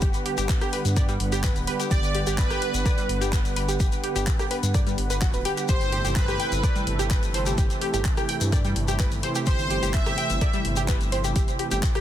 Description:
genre	progressive house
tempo	127 BPM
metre	4/4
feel	straight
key	G major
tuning	A4 = 440 Hz
part	warm analog pad	sustained chords	0.0-12.0 s	C3 to F#5	-32 LUFS	right 2 dB	chorus, sidechain pumping
part	analog pluck	arpeggios	0.0-12.0 s	G3 to G5	-29 LUFS	equal	chorus, sidechain pumping, dub echo
part	dark detuned saw bass	bass	0.0-11.8 s	D1 to G2	-28 LUFS	equal	sidechain pumping
part	deep house drum kit	drums	0.0-12.0 s	handclaps, hi-hat, rim click	-33 LUFS	left 1 dB	overdrive, sidechain pumping on hats, sidechain pumping on cymbals
part	electronic kick drum	drums	0.0-11.9 s	none	-24 LUFS	equal	none
part	shekere	percussion	0.0-12.0 s	none	-36 LUFS	left 7 dB	none
part	soft supersaw	melody	1.9-10.6 s	B4 to E5	-33 LUFS	right 1 dB	dub echo
part	warm chamber violin section	second line	1.9-10.6 s	B4 to E5	-38 LUFS	equal	none
room	digital ambience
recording	dense, heavily limited modern master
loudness	-22 LUFS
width	side -11 dB against mid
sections	0.0-12.0 A section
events	none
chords	0.0 Gmaj7; 5.7 Am/G

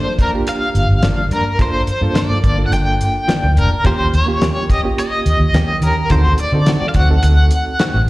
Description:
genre	straight-eighth soul blues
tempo	106 BPM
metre	4/4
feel	straight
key	unclear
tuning	A4 = 440 Hz
part	cranked stack guitar	melody	0.0-8.0 s	Bb4 to G5	-19 LUFS	equal	overdrive, tremolo, slapback echo
part	barky reed electric piano	accompaniment	0.0-7.8 s	Bb3 to A4	-24 LUFS	right 4 dB	overdrive, fast tremolo, slapback echo
part	direct-recorded clean electric guitar	stabs	0.0-8.0 s	Eb3 to G4	-25 LUFS	left 4 dB	tremolo, slapback echo, analog delay
part	cloth-damped thuddy drum kit	drums	0.2-7.9 s	hi-hat, kick drum, snare drum	-19 LUFS	equal	none
part	vintage muted fingered electric bass	bass	0.7-8.1 s	F1 to Eb3	-15 LUFS	equal	none
room	small room ambience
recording	live gig heard through the venue's PA, recital hall reverb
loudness	-13 LUFS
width	side -19 dB against mid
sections	0.0-8.1 A section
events	none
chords	0.0 Gm7; 3.8 Eb7; 6.1 D7b9

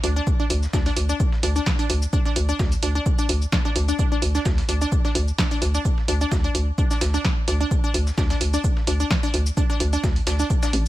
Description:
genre	minimal techno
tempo	129 BPM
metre	4/4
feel	swing 54% on 16ths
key	unclear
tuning	A4 = 437 Hz
part	resonant blip pluck	riff	0.0-10.7 s	D4	-27 LUFS	equal	chorus, sidechain pumping, dub echo
part	hollow knocking FM bass	bass	0.0-10.9 s	A1 to D2	-22 LUFS	equal	tube saturation, sidechain pumping
part	dusty soul sampler-style drum kit	drums	0.0-10.9 s	hi-hat, shaker, snare drum	-36 LUFS	right 2 dB	high-pass filter on snare, sidechain pumping on perc, high-pass filter on perc, sidechain pumping on hats, high-pass filter on hats
part	punchy analog drum machine	drums	0.0-10.9 s	hi-hat, shaker, snare drum	-28 LUFS	right 1 dB	none
part	electronic kick drum	drums	0.3-10.6 s	none	-23 LUFS	equal	none
room	little or no reverb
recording	none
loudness	-19 LUFS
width	side -16 dB against mid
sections	0.0-10.9 A section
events	none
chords	0.0 D5

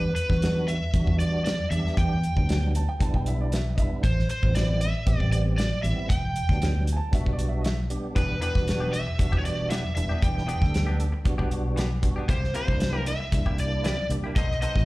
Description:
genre	straight-eighth soul blues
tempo	116 BPM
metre	4/4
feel	straight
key	E minor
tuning	A4 = 441 Hz
part	overdriven slide guitar	melody	0.0-14.8 s	B4 to G5	-30 LUFS	equal	slapback echo
part	tonewheel organ	accompaniment	0.0-14.8 s	F#3 to A4	-34 LUFS	right 2 dB	slow rotary speaker, overdrive, chorus vibrato, slapback echo
part	vintage muted fingered electric bass	bass	0.0-14.8 s	E1 to E2	-26 LUFS	equal	none
part	warm soul drum kit	drums	0.2-14.8 s	hi-hat, kick drum, snare drum	-27 LUFS	equal	none
part	warm upright piano	second line	2.8-7.9 s	D5 to A5	-37 LUFS	right 2 dB	slapback echo
part	direct-recorded clean electric guitar	stabs	8.2-14.8 s	C3 to C5	-36 LUFS	left 3 dB	spring reverb, slapback echo
room	little or no reverb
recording	live gig heard through the venue's PA, club reverb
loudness	-23 LUFS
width	side -20 dB against mid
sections	0.0-14.8 A section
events	none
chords	0.0 Em7; 4.0 Am7; 6.1 Em7; 12.3 C7

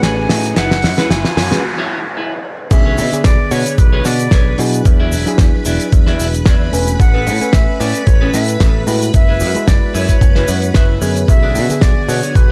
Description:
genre	nu-disco, nu disco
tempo	112 BPM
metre	4/4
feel	swing 54% on 16ths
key	B dorian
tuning	A4 = 438 Hz
part	breathy bright concert flute	melody	0.0-12.5 s	B4 to G#5	-24 LUFS	equal	tape echo
part	overdriven reed electric piano	accompaniment	0.0-12.5 s	D3 to G#5	-24 LUFS	equal	sidechain pumping
part	string machine, full ensemble	sustained chords	0.0-12.5 s	F#4 to B5	-31 LUFS	equal	ensemble chorus, sidechain pumping
part	clean electric guitar	riff	0.0-12.3 s	C#4 to F#5	-26 LUFS	equal	subtle chorus
part	picked electric bass	bass	0.0-12.5 s	E1 to B2	-20 LUFS	equal	sidechain pumping
part	damped 70s drum kit	drums	0.0-12.5 s	crash cymbal, hi-hat, shaker, snare drum	-21 LUFS	equal	small room ambience
part	riser and noise sweep	sound effects	0.0-2.7 s	none	-26 LUFS	equal	none
part	electronic kick drum	drums	2.7-12.5 s	none	-13 LUFS	equal	small room ambience
room	small room ambience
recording	none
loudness	-13 LUFS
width	mono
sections	0.0-2.7 A section; 2.7-12.5 B section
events	build-up 0.0-2.7; drum fill 0.0-1.6; riser 0.0-1.6; noise sweep 0.6-2.7; break 1.6-2.7; drop 2.7-12.5; clean electric guitar fill 10.2-11.3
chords	0.0 Amaj9; 0.6 F#9sus4; 2.7 Bm69; 4.9 E9; 7.0 Amaj9; 9.1 F#9sus4; 11.3 Bm69

